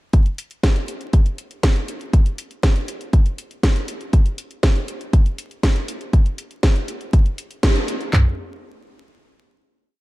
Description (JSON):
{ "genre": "italo disco", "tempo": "120 BPM", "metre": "4/4", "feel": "straight", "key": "none", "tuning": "none", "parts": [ { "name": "house drum kit", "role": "drums", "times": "0.1-8.2 s", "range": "handclaps, kick drum, toms", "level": "-15 LUFS", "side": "equal", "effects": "none" }, { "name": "house drum kit", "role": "drums", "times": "0.1-8.1 s", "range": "hi-hat, snare drum", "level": "-25 LUFS", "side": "equal", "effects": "none" } ], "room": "light reverb", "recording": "dark, warm production, vinyl crackle", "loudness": "-17 LUFS", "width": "side -19 dB against mid", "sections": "0.1-8.1 verse; 8.1-10.0 final hit", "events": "band accent 7.6", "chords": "none" }